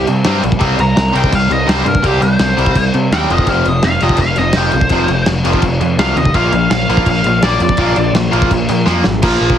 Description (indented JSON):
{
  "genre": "punk rock",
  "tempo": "167 BPM",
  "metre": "4/4",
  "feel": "straight",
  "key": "unclear",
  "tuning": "A4 = 439 Hz",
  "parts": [
    { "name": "nasal lead guitar with a parked wah", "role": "melody", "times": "0.0-8.1 s", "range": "G4 to Bb5", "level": "-17 LUFS", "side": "left 1 dB", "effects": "overdrive" },
    { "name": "raw garage guitar", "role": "riff", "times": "0.0-9.6 s", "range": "F2 to C4", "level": "-15 LUFS", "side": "equal", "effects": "overdrive" },
    { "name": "fuzz picked electric bass", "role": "bass", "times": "0.0-9.5 s", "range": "F1 to C3", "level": "-17 LUFS", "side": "equal", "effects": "overdrive" },
    { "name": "loose indie drum kit", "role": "drums", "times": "0.1-9.6 s", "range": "crash cymbal, kick drum, snare drum", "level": "-17 LUFS", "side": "equal", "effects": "none" }
  ],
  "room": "light reverb",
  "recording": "heavily compressed radio sound",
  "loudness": "-11 LUFS",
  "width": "side -9 dB against mid",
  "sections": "0.0-9.2 A section",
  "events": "lead electric guitar solo 0.0-9.2; drum fill 8.9-9.2",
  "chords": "0.0 C5; 3.3 F5; 6.3 Bb",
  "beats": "0.25 | 0.61 0.96 1.32 1.68 | 2.04 2.40 2.75 3.11 | 3.47 3.83 4.19 4.55 | 4.91 5.27 5.63 5.99 | 6.35 6.71 7.07 7.43 | 7.79 8.15 8.51 8.87 | 9.22"
}